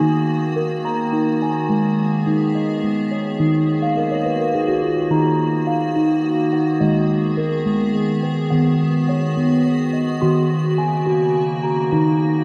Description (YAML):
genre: world meditative, meditative tuned percussion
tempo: 70 BPM (dotted quarters)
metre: 6/8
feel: straight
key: Eb minor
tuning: A4 = 440 Hz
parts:
  - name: icy glass pad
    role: sustained chords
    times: 0.0-12.4 s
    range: Db3 to Ab4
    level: -26 LUFS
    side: equal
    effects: chorus, built-in reverb
  - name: steel tongue drum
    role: arpeggios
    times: 0.0-12.4 s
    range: Eb3 to C6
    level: -20 LUFS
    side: equal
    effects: tape echo
room: wet lush hall reverb, RT60 2.0 s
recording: dark, warm production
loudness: -19 LUFS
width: mono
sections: 0.0-5.1 A section; 5.1-12.4 B section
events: steel tongue drum fill 3.8-5.1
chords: 0.0 Ebm; 1.7 Abm; 3.4 Ebm; 6.8 Abm/Eb; 8.5 B/D#; 10.2 Gb; 11.9 Ebm